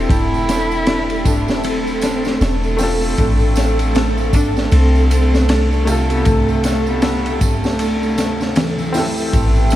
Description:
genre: trip hop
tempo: 78 BPM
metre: 4/4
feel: swing 60% on 16ths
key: unclear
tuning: A4 = 440 Hz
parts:
  - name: dark cello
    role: melody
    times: 0.0-9.8 s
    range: A3 to E4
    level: -22 LUFS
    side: equal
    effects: dub echo
  - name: bright upright piano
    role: accompaniment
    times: 0.0-9.8 s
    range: C3 to A4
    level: -23 LUFS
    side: equal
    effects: tremolo, tape echo
  - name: string machine, cellos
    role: sustained chords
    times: 0.0-9.8 s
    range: A4 to B4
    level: -24 LUFS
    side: right 1 dB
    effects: ensemble chorus
  - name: concert harp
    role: arpeggios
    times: 0.0-9.8 s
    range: E3 to D4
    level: -26 LUFS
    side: left 2 dB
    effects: ping-pong delay
  - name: soft 808-style bass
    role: bass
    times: 0.0-9.8 s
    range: E1 to D2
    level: -18 LUFS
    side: equal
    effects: none
  - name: crunchy breakbeat drum kit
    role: drums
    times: 0.1-9.8 s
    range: hi-hat, kick drum, ride cymbal, snare drum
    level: -20 LUFS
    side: equal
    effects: none
  - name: tambourine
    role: percussion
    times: 0.1-9.8 s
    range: none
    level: -34 LUFS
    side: right 7 dB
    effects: none
room: light reverb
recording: vinyl crackle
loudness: -14 LUFS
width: side -13 dB against mid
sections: 0.0-9.8 A section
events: none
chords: 0.0 Am7; 3.2 F/A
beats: | 0.10 0.87 1.64 2.41 | 3.18 3.95 4.72 5.49 | 6.26 7.03 7.80 8.56 | 9.33

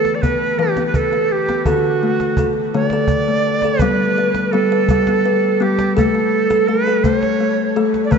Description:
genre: world meditative, meditative tuned percussion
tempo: 56 BPM (dotted quarters)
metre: 6/8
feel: straight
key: unclear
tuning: A4 = 437 Hz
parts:
  - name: bright reedy Native American-style cedar flute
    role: melody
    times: 0.0-8.2 s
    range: F#4 to D5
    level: -18 LUFS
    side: right 6 dB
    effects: shimmer reverb, diffuse ambient delay
  - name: kalimba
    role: arpeggios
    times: 0.0-8.2 s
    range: D3 to B4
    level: -17 LUFS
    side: left 3 dB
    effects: shimmer reverb
  - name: cajon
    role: percussion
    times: 0.0-8.2 s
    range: none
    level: -21 LUFS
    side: right 1 dB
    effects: none
room: wet scoring stage reverb, RT60 1.8 s, small room ambience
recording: nothing above 7.8 kHz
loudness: -14 LUFS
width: side -6 dB against mid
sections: 0.0-3.8 A section; 3.8-8.2 B section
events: none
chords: 0.0 E5; 1.7 D; 3.8 G; 6.0 A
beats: 0.58 | 1.66 2.74 | 3.81 4.89 | 5.97 7.04 | 8.12

